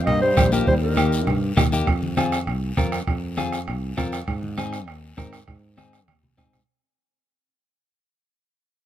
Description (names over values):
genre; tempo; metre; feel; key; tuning
latin, cumbia; 200 BPM; 4/4; straight; F minor; A4 = 440 Hz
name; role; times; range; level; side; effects
sustaining fretless electric bass; bass; 0.0-6.6 s; Bb1 to Ab2; -26 LUFS; equal; none
dark clarinet; melody; 0.1-1.4 s; Bb4 to Eb5; -23 LUFS; left 1 dB; none
warm trombone; second line; 0.1-1.4 s; Eb3 to Bb3; -29 LUFS; right 3 dB; none
bombo; percussion; 0.1-6.7 s; none; -25 LUFS; right 3 dB; none
congas; percussion; 0.1-6.6 s; none; -29 LUFS; left 1 dB; none
guiro; percussion; 0.1-6.7 s; none; -38 LUFS; left 5 dB; none
clean electric guitar; accompaniment; 0.4-6.6 s; Bb3 to Bb4; -27 LUFS; left 4 dB; none
room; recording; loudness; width
light reverb; minimal, uncompressed stereo recording; -20 LUFS; side -11 dB against mid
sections
0.0-1.9 A section; 1.9-6.7 B section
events
fade-out 1.9-6.7; drum fill 6.1-6.7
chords
0.0 Eb; 1.9 Fm; 4.3 Ab